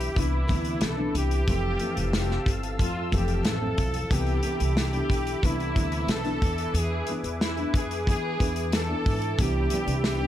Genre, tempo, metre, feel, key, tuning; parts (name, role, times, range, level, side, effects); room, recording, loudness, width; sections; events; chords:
indie pop, bedroom pop; 91 BPM; 4/4; straight; C major; A4 = 441 Hz
warm trumpet; melody; 0.0-10.3 s; E4 to A4; -30 LUFS; equal; ensemble chorus
nylon-string guitar; accompaniment; 0.0-10.3 s; F2 to G#4; -31 LUFS; left 2 dB; analog chorus, warbly pitch drift
warm analog pad; sustained chords; 0.0-10.3 s; A4 to E6; -38 LUFS; left 1 dB; chorus
upright bass; bass; 0.0-10.3 s; F1 to G#2; -29 LUFS; equal
loose indie drum kit; drums; 0.0-10.2 s; hi-hat, kick drum, snare drum; -28 LUFS; equal
mellow tonewheel organ; accompaniment; 9.4-10.3 s; B3 to G4; -34 LUFS; right 8 dB; chorus vibrato, cassette tape
small room ambience; -24 LUFS; side -12 dB against mid
0.0-10.3 A section
0.0 Cmaj9; 1.5 Fmaj7; 4.1 Cmaj9; 6.4 E7; 9.4 Cmaj9